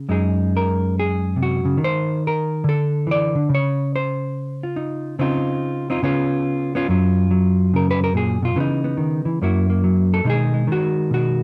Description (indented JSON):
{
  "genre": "solo jazz",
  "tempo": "142 BPM",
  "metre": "4/4",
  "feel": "swing 68% on 8ths",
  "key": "Db major, F# major from 6.9 s",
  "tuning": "A4 = 440 Hz",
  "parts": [
    { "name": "hollow-body jazz guitar", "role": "solo", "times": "0.0-11.4 s", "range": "Gb2 to D5", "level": "-20 LUFS", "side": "equal", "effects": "none" }
  ],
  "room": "light reverb",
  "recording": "close, detailed microphones",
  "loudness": "-20 LUFS",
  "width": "mono",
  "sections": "0.0-6.9 A section; 6.9-11.4 A section",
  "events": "hollow-body jazz guitar solo 0.0-6.9, 6.9-11.4",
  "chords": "0.1 Gb69; 1.8 N.C.; 2.6 Dsus2; 3.5 Dbmaj9; 6.0 Db7; 6.9 F#maj7; 8.6 C#m7; 9.4 F#7; 10.3 B6",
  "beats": "| 0.09 0.52 0.94 1.36 | 1.79 2.21 2.63 3.06 | 3.48 3.91 4.33 4.75 | 5.18 5.60 6.02 6.45 | 6.87 7.29 7.72 8.14 | 8.56 8.99 9.41 9.83 | 10.26 10.68 11.10"
}